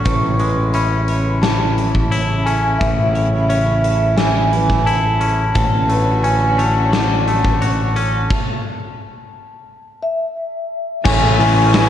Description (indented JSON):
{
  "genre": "post-rock",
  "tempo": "87 BPM",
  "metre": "4/4",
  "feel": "straight",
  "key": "A major",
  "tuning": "A4 = 440 Hz",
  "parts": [
    { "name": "vibraphone with soft mallets", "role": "melody", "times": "0.0-11.9 s", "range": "E5 to C#6", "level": "-20 LUFS", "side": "equal", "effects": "analog delay" },
    { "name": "clear studio string section", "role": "sustained chords", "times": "0.0-11.9 s", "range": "C#3 to G#5", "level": "-27 LUFS", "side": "equal", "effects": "none" },
    { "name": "electric guitar through a small old amp", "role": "arpeggios", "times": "0.0-11.9 s", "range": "A4 to C#5", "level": "-29 LUFS", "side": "right 3 dB", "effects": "harmonic tremolo, analog delay, slapback echo" },
    { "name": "twangy electric guitar", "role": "arpeggios", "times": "0.0-8.3 s", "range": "A2 to F#4", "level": "-24 LUFS", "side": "left 2 dB", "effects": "analog delay" },
    { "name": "growling picked electric bass", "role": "bass", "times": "0.1-11.9 s", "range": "A1", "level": "-18 LUFS", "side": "equal", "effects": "overdrive" },
    { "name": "big rock drum kit", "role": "drums", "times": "0.1-11.9 s", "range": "crash cymbal, hi-hat, kick drum, snare drum", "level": "-21 LUFS", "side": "equal", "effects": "vintage 12-bit sampler grit" },
    { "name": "raw garage guitar", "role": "riff", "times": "11.0-11.9 s", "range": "A2 to E4", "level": "-18 LUFS", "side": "left 8 dB", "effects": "overdrive, slapback echo" }
  ],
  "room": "moderate lush hall reverb, RT60 2.7 s",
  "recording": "big arena sound, cassette tape",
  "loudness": "-14 LUFS",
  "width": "side -10 dB against mid",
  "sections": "0.0-11.0 A section",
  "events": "stop 8.3-11.0",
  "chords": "0.1 Amaj7; 5.6 Dmaj7/A; 11.0 Amaj7"
}